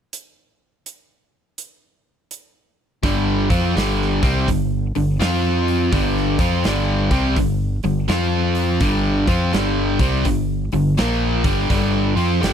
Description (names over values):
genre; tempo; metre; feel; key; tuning
blues rock power trio and southern rock; 83 BPM; 4/4; swing 64% on 8ths; unclear; A4 = 441 Hz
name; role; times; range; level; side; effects
big rock drum kit; drums; 0.1-12.5 s; hi-hat, kick drum, snare drum; -23 LUFS; equal; none
cranked stack guitar; riff; 3.0-12.5 s; G2 to F4; -19 LUFS; equal; overdrive
growling fingered electric bass; bass; 3.0-12.5 s; G1 to F2; -22 LUFS; equal; overdrive
room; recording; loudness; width
studio ambience; dry, close 1970s-style studio recording; -16 LUFS; side -8 dB against mid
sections
0.1-3.0 A section; 3.0-12.5 B section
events
none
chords
0.1 N.C.; 3.0 G5; 5.2 F5; 5.9 G5; 8.1 F5; 8.8 G5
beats
| 0.14 0.86 1.59 2.31 | 3.03 3.75 4.48 5.20 | 5.92 6.65 7.37 8.09 | 8.82 9.54 10.27 10.99 | 11.71 12.44